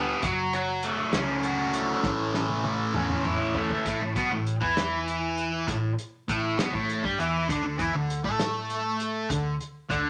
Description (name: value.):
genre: psychedelic rock.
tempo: 66 BPM (dotted quarters).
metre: 6/8.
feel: straight.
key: A mixolydian.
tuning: A4 = 440 Hz.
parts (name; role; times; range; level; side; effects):
thick fuzz guitar; riff; 0.0-10.1 s; A2 to A4; -28 LUFS; equal; distortion, phaser.
vintage muted picked electric bass; bass; 0.0-10.1 s; F#1 to A2; -38 LUFS; equal; none.
damped 70s drum kit; drums; 0.2-10.0 s; hi-hat, kick drum, snare drum, toms; -35 LUFS; equal; none.
room: wet studio reverb, RT60 0.7 s.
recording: none.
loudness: -28 LUFS.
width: mono.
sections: 0.0-3.9 A section; 3.9-10.1 B section.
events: drum fill 2.0-3.9.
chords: 0.2 F#m; 2.0 A; 3.9 A5; 7.5 D5.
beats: | 0.23 1.14 | 2.05 2.95 | 3.86 4.77 | 5.67 6.58 | 7.49 8.39 | 9.30.